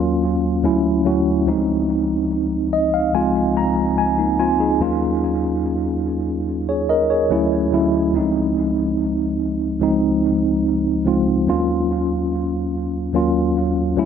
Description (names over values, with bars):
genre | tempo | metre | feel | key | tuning
R&B | 72 BPM | 4/4 | straight | unclear | A4 = 442 Hz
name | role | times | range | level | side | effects
mellow tine electric piano | solo | 0.0-14.1 s | Db2 to Bb5 | -17 LUFS | equal | medium stereo tremolo, analog delay
room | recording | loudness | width
moderate plate reverb, RT60 3.3 s | echo-heavy mix | -17 LUFS | side -8 dB against mid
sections
0.0-14.1 A section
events
tine electric piano fill 2.3-4.8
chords
0.0 Ebm7; 0.6 Dmaj7; 1.5 Dbmaj7; 4.8 Ebm7; 7.3 Dmaj7; 8.1 Dbmaj7; 11.5 Ebm7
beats
0.64 | 1.47 2.30 3.14 3.97 | 4.80 5.64 6.47 7.30 | 8.14 8.97 9.80 10.64 | 11.47 12.30 13.14 13.97